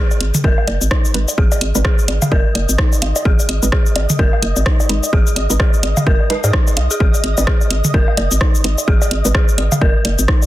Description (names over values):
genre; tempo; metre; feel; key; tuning
minimal techno; 128 BPM; 4/4; swing 60% on 16ths; G# minor; A4 = 440 Hz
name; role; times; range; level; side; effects
dark detuned synth bell; riff; 0.0-10.3 s; D#4 to D#5; -25 LUFS; left 2 dB; chorus, sidechain pumping, dub echo
flickering grainy texture; texture; 0.8-10.5 s; D#5; -28 LUFS; right 1 dB; built-in reverb, sidechain pumping
house drum kit; drums; 0.1-10.5 s; cabasa, hi-hat, rim click; -20 LUFS; left 1 dB; overdrive
electronic bongos, toms and woodblock; percussion; 0.1-10.5 s; none; -22 LUFS; right 1 dB; none
hollow knocking FM bass; bass; 0.2-10.3 s; F#1 to G#2; -18 LUFS; equal; sidechain pumping
electronic kick drum; drums; 0.4-10.4 s; none; -14 LUFS; equal; overdrive
filtered dub chord stab; stabs; 1.1-9.3 s; G#3 to B4; -26 LUFS; right 2 dB; lush chorus, dub echo
room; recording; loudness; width
digital ambience; dense, heavily limited modern master; -13 LUFS; side -15 dB against mid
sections
0.0-10.5 A section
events
none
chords
0.0 G#5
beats
0.44 0.91 | 1.38 1.85 2.31 2.78 | 3.25 3.72 4.19 4.66 | 5.13 5.60 6.07 6.53 | 7.00 7.47 7.94 8.41 | 8.88 9.35 9.81 10.28